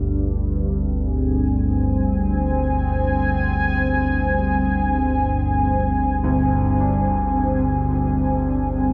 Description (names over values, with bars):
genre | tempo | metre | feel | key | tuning
dark ambient drone | 54 BPM | 4/4 | straight | unclear | A4 = 439 Hz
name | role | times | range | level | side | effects
sweeping resonant pad | sustained chords | 0.0-8.9 s | G2 to Ab5 | -23 LUFS | equal | chorus
warm baby grand piano | arpeggios | 0.0-8.9 s | D2 to D4 | -33 LUFS | equal | diffuse ambient delay
deep rumbling drone | drone | 0.0-8.9 s | G1 to D2 | -24 LUFS | equal | built-in reverb
room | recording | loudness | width
wet huge ambient reverb, RT60 7.5 s | dark, warm production, nothing above 10.8 kHz | -21 LUFS | mono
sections
0.0-8.9 A section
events
none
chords
0.0 Ab/G